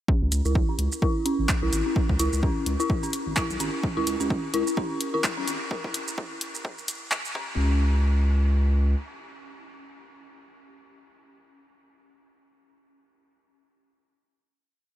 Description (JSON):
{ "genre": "minimal techno", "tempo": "128 BPM", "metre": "4/4", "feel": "swing 57% on 16ths", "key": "C# minor", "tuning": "A4 = 440 Hz", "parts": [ { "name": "dark detuned synth bell", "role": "riff", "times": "0.1-7.8 s", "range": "C#4 to E4", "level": "-29 LUFS", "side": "equal", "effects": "chorus, phaser, sidechain pumping, low-pass filter, analog delay" }, { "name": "electronic kick drum", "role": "drums", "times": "0.1-7.5 s", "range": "none", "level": "-26 LUFS", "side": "equal", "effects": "overdrive" }, { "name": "saturated sub bass", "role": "bass", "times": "0.2-9.0 s", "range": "G#1 to C#2", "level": "-24 LUFS", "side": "equal", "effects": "sidechain pumping" }, { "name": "punchy analog drum machine", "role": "drums", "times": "0.3-7.3 s", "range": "handclaps, hi-hat, shaker", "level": "-31 LUFS", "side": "equal", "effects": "overdrive" } ], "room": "light reverb", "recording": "high-pass filter", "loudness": "-23 LUFS", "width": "side -12 dB against mid", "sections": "0.1-7.6 build; 7.6-11.3 final hit", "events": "build-up 0.1-7.6; filter sweep on synth bell 0.1-5.7; filter sweep 0.1-7.6", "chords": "none" }